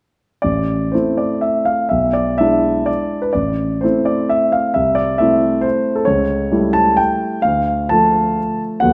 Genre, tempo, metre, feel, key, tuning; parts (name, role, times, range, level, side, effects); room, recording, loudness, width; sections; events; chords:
classical, romantic triple-time dance for piano with dotted rhythms; 117-143 BPM; 3/4; rubato; A minor; A4 = 440 Hz
warm grand piano; solo; 0.4-8.9 s; A1 to A5; -16 LUFS; equal
moderate recital hall reverb, RT60 1.5 s; -17 LUFS; mono
0.4-8.9 A section
0.4 Am; 1.9 E7/B; 3.3 Am; 4.8 Am/C; 6.1 A7/C#; 7.4 Dm